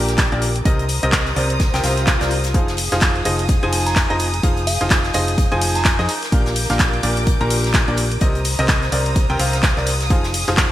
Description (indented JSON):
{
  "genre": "piano house",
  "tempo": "127 BPM",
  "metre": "4/4",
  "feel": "swing 59% on 16ths",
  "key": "F dorian",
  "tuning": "A4 = 441 Hz",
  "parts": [
    { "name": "rich chamber violin section", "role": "sustained chords", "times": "0.0-10.7 s", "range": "Ab4 to G6", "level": "-27 LUFS", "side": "equal", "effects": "sidechain pumping" },
    { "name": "clear grand piano", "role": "riff", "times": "0.0-10.7 s", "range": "Bb2 to Bb5", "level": "-22 LUFS", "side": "equal", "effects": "sidechain pumping, digital delay" },
    { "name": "hollow-body short-scale fingered electric bass", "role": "bass", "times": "0.0-10.7 s", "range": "F1 to F2", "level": "-22 LUFS", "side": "equal", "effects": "sidechain pumping" },
    { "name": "loose indie drum kit", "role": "drums", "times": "0.1-10.7 s", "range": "hi-hat, snare drum", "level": "-31 LUFS", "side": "left 2 dB", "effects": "none" },
    { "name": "punchy analog drum machine", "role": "drums", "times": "0.1-10.7 s", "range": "handclaps, hi-hat, ride cymbal", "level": "-22 LUFS", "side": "equal", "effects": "gated reverb" },
    { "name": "electronic kick drum", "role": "drums", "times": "0.2-10.7 s", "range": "none", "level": "-18 LUFS", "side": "equal", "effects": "none" },
    { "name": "swell", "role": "sound effects", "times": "1.8-2.5 s", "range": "none", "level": "-30 LUFS", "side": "left 1 dB", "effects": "none" },
    { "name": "glassy synth bell", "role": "melody", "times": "3.9-6.1 s", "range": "F5 to Bb5", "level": "-26 LUFS", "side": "right 1 dB", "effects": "chorus, tremolo, digital delay" }
  ],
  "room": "light reverb, small room reverb",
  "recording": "bright 1980s-style digital production",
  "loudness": "-15 LUFS",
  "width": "side -14 dB against mid",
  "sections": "0.0-10.7 A section",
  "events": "swell 1.8-2.5",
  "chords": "0.0 Bb6; 0.7 Cm7; 2.5 Fm7; 6.1 Bb6; 8.2 Cm7; 10.1 Fm7"
}